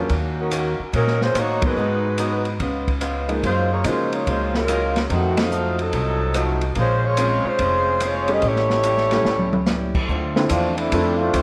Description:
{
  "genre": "jazz, big band swing",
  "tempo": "144 BPM",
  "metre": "4/4",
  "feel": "swing 66% on 8ths",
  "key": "unclear",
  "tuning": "A4 = 440 Hz",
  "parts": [
    { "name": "clear concert grand piano", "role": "accompaniment", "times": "0.0-11.2 s", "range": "F3 to G4", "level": "-28 LUFS", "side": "equal", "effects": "none" },
    { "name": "upright bass", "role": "bass", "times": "0.0-11.4 s", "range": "F1 to Db3", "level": "-27 LUFS", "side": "equal", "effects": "none" },
    { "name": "picked swing-style acoustic guitar", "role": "accompaniment", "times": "0.1-11.4 s", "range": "Ab2 to C5", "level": "-30 LUFS", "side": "equal", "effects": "none" },
    { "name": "open jazz drum kit", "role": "drums", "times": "0.1-11.4 s", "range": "crash cymbal, hi-hat, kick drum, ride cymbal, rim click, snare drum, toms", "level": "-28 LUFS", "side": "equal", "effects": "none" },
    { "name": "warm saxophone section", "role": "melody", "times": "0.4-9.7 s", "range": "Eb3 to Eb5", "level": "-24 LUFS", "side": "equal", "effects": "none" },
    { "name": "brilliant trombone section", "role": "second line", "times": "10.4-11.4 s", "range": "D3 to F4", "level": "-24 LUFS", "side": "equal", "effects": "none" }
  ],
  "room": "moderate scoring stage reverb, RT60 1.5 s",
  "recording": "faint mains hum",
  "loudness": "-21 LUFS",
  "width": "mono",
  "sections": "0.0-10.1 A section; 10.1-11.4 B section",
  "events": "band accent 1.6, 5.3; drum fill 9.3-9.7; trombone section solo 10.1-11.4",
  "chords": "0.1 Ebm7; 1.8 Abm7; 2.6 Db7; 3.4 Gbmaj13; 5.1 F7b9; 6.8 Bbm9; 8.4 A7; 10.1 Dm7"
}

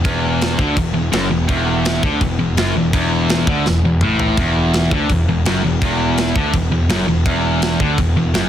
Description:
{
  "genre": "heavy metal",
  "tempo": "166 BPM",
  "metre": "4/4",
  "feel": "straight",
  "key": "unclear",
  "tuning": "A4 = 440 Hz",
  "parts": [
    { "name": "high-gain distorted guitar", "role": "riff", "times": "0.0-8.5 s", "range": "E2 to D3", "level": "-16 LUFS", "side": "equal", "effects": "distortion" },
    { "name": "fuzz picked electric bass", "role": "bass", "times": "0.0-8.5 s", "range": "E1 to D2", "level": "-21 LUFS", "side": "equal", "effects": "overdrive" },
    { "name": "tight metal drum kit", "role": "drums", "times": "0.0-8.4 s", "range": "crash cymbal, kick drum, snare drum, toms", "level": "-21 LUFS", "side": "equal", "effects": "soft clipping on kick" }
  ],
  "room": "little or no reverb",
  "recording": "dense, heavily limited modern master",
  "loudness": "-14 LUFS",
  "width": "side -10 dB against mid",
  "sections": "0.0-8.5 A section",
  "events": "drum fill 3.7-4.4",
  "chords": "0.0 E7sus2"
}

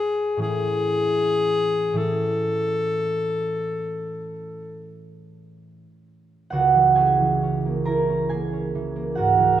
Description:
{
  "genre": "classical, impressionist duo for alto saxophone and harp",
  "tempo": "37-48 BPM (dotted quarters)",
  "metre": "12/8",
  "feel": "rubato",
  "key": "unclear",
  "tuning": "A4 = 441 Hz",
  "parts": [
    { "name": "clear alto saxophone", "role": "melody", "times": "0.0-9.6 s", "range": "G#4 to A#4", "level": "-23 LUFS", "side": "left 3 dB", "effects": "none" },
    { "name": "concert harp", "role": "accompaniment", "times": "0.4-9.6 s", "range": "C#2 to A#5", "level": "-22 LUFS", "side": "right 4 dB", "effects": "none" }
  ],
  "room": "moderate scoring stage reverb, RT60 2.1 s",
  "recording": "none",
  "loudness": "-20 LUFS",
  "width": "side -11 dB against mid",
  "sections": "0.0-6.5 A section; 6.5-9.6 B section",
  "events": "none",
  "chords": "0.4 Amaj7; 6.5 C#m6"
}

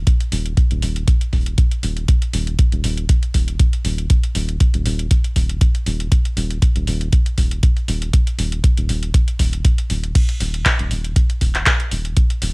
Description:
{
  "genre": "acid house",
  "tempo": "119 BPM",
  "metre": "4/4",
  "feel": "swing 54% on 16ths",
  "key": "unclear",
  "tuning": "A4 = 436 Hz",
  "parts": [
    { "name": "round analog bass", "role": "bass", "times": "0.0-12.5 s", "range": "Eb1", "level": "-21 LUFS", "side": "equal", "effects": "sidechain pumping" },
    { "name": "booming analog drum machine", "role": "drums", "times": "0.1-12.5 s", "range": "crash cymbal, handclaps, hi-hat", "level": "-24 LUFS", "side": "equal", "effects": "cassette tape" },
    { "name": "electronic kick drum", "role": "drums", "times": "0.1-12.3 s", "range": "none", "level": "-15 LUFS", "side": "equal", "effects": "cassette tape" }
  ],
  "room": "little or no reverb",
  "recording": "home recording on cassette",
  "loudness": "-15 LUFS",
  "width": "side -32 dB against mid",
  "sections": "0.0-12.5 A section",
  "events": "none",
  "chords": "none"
}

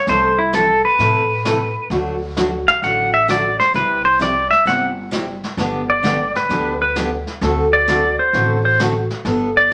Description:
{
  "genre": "country, western swing",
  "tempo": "131 BPM",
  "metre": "4/4",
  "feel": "swing 67% on 8ths",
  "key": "unclear",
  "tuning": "A4 = 440 Hz",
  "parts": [
    { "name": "clean lap steel guitar", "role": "melody", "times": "0.0-9.7 s", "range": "E4 to F#5", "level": "-17 LUFS", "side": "equal", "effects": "none" },
    { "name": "picked steel-string acoustic guitar", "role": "accompaniment", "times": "0.1-9.7 s", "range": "C3 to A4", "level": "-24 LUFS", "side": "equal", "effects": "none" },
    { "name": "upright bass", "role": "bass", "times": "0.1-9.7 s", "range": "G1 to A2", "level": "-27 LUFS", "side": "equal", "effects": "none" },
    { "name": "vintage brush drum kit", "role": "drums", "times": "0.1-9.7 s", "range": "brushed snare drum, hi-hat, snare drum", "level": "-30 LUFS", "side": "equal", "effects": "none" }
  ],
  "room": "wet large studio reverb, RT60 0.8 s",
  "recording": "none",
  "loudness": "-17 LUFS",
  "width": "mono",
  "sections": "0.0-9.7 A section",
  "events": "electric slide guitar solo 0.0-9.7",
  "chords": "0.1 Am/C; 1.9 D; 3.7 C; 5.6 G; 7.4 D7"
}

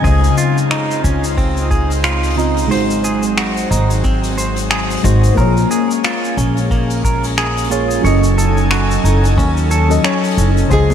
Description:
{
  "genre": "sunset chillout",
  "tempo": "90 BPM",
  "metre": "4/4",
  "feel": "swing 57% on 16ths",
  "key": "Db major",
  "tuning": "A4 = 440 Hz",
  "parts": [
    { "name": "mellow FM electric piano", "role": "accompaniment", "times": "0.0-10.9 s", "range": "Db3 to Eb5", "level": "-19 LUFS", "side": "moving between left 7 dB and right 7 dB", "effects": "chorus, phaser, auto-pan, ping-pong delay, shimmer reverb" },
    { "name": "airy breathy pad", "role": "sustained chords", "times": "0.0-10.9 s", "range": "Db3 to Ab5", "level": "-22 LUFS", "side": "equal", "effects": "chorus, shimmer reverb" },
    { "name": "clean electric guitar", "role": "arpeggios", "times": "0.0-10.9 s", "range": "Bb3 to Db5", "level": "-21 LUFS", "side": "right 1 dB", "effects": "vintage 12-bit sampler grit, ping-pong delay, shimmer reverb" },
    { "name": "upright bass", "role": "bass", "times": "0.0-10.9 s", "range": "Gb1 to Eb2", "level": "-16 LUFS", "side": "equal", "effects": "none" },
    { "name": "electronic kick drum", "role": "drums", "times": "0.0-10.9 s", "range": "none", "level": "-18 LUFS", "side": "equal", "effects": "none" },
    { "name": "jazz brush drum kit", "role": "drums", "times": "0.0-10.9 s", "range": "finger snaps, hi-hat, shaker", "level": "-22 LUFS", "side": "left 1 dB", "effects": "none" },
    { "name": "flamenco guitar", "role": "melody", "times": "10.7-10.9 s", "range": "Ab4", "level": "-15 LUFS", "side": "equal", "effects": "none" },
    { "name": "congas", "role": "percussion", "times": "10.9 s", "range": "none", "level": "-24 LUFS", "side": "left 5 dB", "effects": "none" }
  ],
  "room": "light reverb, studio reverb",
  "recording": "none",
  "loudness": "-12 LUFS",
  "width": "side -9 dB against mid",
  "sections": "0.0-10.9 A section",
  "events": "none",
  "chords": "0.0 Dbmaj9; 2.7 Ab7; 5.4 Bbm7; 8.0 Gbm6"
}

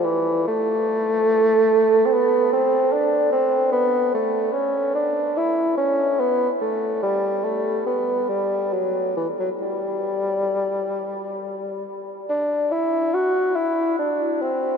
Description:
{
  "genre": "classical, baroque-style fantasia for unaccompanied bassoon",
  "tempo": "66-74 BPM",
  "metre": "3/4",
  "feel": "rubato",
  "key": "G major",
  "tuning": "A4 = 441 Hz",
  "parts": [
    { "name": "dark bassoon", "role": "solo", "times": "0.0-14.8 s", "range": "E3 to F#4", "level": "-19 LUFS", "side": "equal", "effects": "none" }
  ],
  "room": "wet huge ambient reverb, RT60 7.8 s",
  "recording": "in a vast, echoing space",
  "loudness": "-19 LUFS",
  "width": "side -6 dB against mid",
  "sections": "0.0-12.3 A section; 12.3-14.8 B section",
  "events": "none",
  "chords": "none"
}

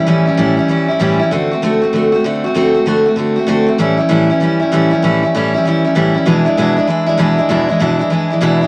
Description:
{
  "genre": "rock",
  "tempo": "194 BPM",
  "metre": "4/4",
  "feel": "swing 64% on 8ths",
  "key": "A mixolydian",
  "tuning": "A4 = 440 Hz",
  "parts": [
    { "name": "picked steel-string acoustic guitar", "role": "solo", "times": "0.0-8.7 s", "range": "E2 to F#4", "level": "-14 LUFS", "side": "equal", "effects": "none" }
  ],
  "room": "moderate studio ambience, RT60 0.4 s",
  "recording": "vinyl crackle",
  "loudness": "-14 LUFS",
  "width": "mono",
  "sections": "0.0-8.7 A section",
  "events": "none",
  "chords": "0.0 A7; 1.3 D7; 3.8 A7; 6.3 E7"
}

